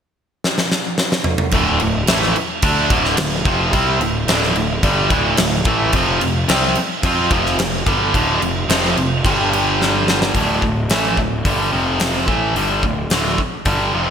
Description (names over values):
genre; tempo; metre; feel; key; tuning
hard rock; 109 BPM; 4/4; straight; D minor; A4 = 440 Hz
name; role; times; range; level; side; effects
huge arena drum kit; drums; 0.4-13.8 s; crash cymbal, hi-hat, kick drum, snare drum, toms; -19 LUFS; equal; gated reverb
overdriven electric guitar; riff; 1.5-14.1 s; D2 to F4; -17 LUFS; equal; none
fuzz picked electric bass; bass; 1.5-14.1 s; D1 to F2; -22 LUFS; equal; overdrive
room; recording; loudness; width
moderate lush hall reverb, RT60 1.9 s, studio reverb; bright 1980s-style digital production; -15 LUFS; side -8 dB against mid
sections
0.0-1.5 A section; 1.5-10.4 B section; 10.4-14.1 C section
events
drum fill 0.4-1.5, 9.8-10.4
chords
0.0 N.C.; 1.5 Dm; 5.9 F5; 9.2 G5; 10.4 D5; 11.7 F5; 12.3 Dm